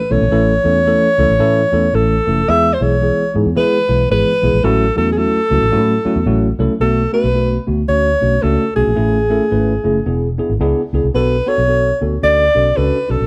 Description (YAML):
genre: uptempo 1960s-style soul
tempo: 111 BPM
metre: 4/4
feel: swing 61% on 8ths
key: A major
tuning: A4 = 444 Hz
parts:
  - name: warm alto saxophone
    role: melody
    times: 0.0-13.3 s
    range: G#4 to E5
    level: -18 LUFS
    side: equal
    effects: none
  - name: tine electric piano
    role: accompaniment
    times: 0.1-13.2 s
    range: E3 to B4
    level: -20 LUFS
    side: equal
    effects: none
  - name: vintage muted fingered electric bass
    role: bass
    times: 0.1-13.3 s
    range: E1 to E3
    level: -20 LUFS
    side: equal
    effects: none
room: moderate stone room reverb, RT60 1.2 s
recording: band playing live in one room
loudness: -15 LUFS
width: mono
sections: 0.0-6.8 A section; 6.8-13.3 B section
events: none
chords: 0.0 A; 2.5 E; 4.6 A6; 6.8 Bm7; 7.9 Dmaj7; 9.0 Amaj7; 10.1 E7; 11.1 Bm7; 12.2 Dmaj7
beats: | 0.32 0.86 1.40 1.94 | 2.48 3.02 3.56 4.10 | 4.64 5.18 5.72 6.26 | 6.81 7.35 7.89 8.43 | 8.97 9.51 10.06 10.60 | 11.14 11.68 12.22 12.76